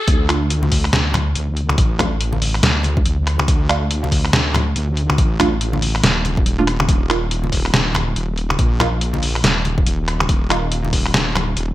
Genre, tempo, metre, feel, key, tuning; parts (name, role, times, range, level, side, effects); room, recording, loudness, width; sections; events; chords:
deep dubstep; 141 BPM; 4/4; swing 59% on 16ths, half-time; D phrygian; A4 = 440 Hz
wobble bass; bass; 0.1-11.7 s; Eb1 to D2; -20 LUFS; equal; chorus, high-pass filter
electronic kick drum; drums; 0.1-11.0 s; -18 LUFS; equal; high-pass filter on kick
trip hop sampler-style drum kit; drums; 0.1-11.7 s; finger snaps, hi-hat, snare drum; -19 LUFS; equal; high-pass filter on hats, high-pass filter on snare, gated reverb
filtered dub chord stab; stabs; 0.3-11.7 s; A3 to F4; -24 LUFS; right 3 dB; phaser, dub echo
congas; percussion; 0.6-11.5 s; -26 LUFS; left 2 dB
light reverb, digital ambience; bright 1980s-style digital production; -15 LUFS; side -15 dB against mid
0.1-11.7 A section
drop 0.1-11.7
0.1 Dm; 6.9 Ebsus2